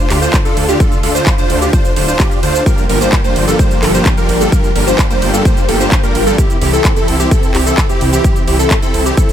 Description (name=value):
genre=EDM, festival progressive house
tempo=129 BPM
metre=4/4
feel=straight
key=unclear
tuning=A4 = 439 Hz
part: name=muted studio string section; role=sustained chords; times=0.0-9.3 s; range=D3 to G4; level=-22 LUFS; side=left 1 dB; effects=sidechain pumping
part: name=plucky unison lead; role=arpeggios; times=0.0-9.3 s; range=G4 to C5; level=-18 LUFS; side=left 1 dB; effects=phaser, sidechain pumping, tape echo
part: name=supersaw chords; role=riff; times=0.0-9.3 s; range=G3 to C5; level=-17 LUFS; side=right 1 dB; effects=sidechain pumping, tape echo
part: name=wide detuned saw bass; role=bass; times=0.1-9.1 s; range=D1 to D2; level=-17 LUFS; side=equal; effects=chorus, sidechain pumping
part: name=big-room dance drum kit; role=drums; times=0.1-9.3 s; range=handclaps, hi-hat, ride cymbal, rim click, shaker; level=-20 LUFS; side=right 1 dB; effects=none
part: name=electronic kick drum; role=drums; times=0.3-9.3 s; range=none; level=-13 LUFS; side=equal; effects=none
room=little or no reverb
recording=none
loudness=-10 LUFS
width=side -10 dB against mid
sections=0.0-9.3 A section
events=none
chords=0.0 Dm; 2.7 Gm7; 6.4 C